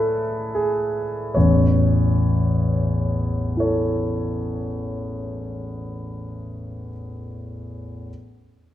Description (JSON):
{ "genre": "classical, impressionist solo piano", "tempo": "27 BPM (dotted quarters)", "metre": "6/8", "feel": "rubato", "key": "A major", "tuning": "A4 = 444 Hz", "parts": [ { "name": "clear concert grand piano", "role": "solo", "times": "0.0-8.1 s", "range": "A1 to C#5", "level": "-21 LUFS", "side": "equal", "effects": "none" } ], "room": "wet recital hall reverb, RT60 1.4 s", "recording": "dark, warm production", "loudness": "-19 LUFS", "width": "side -12 dB against mid", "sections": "0.0-1.3 A section; 1.3-5.8 B section", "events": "slowing down 0.0-1.3", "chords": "0.0 Amaj7; 1.3 A", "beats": "| 1.34 3.57" }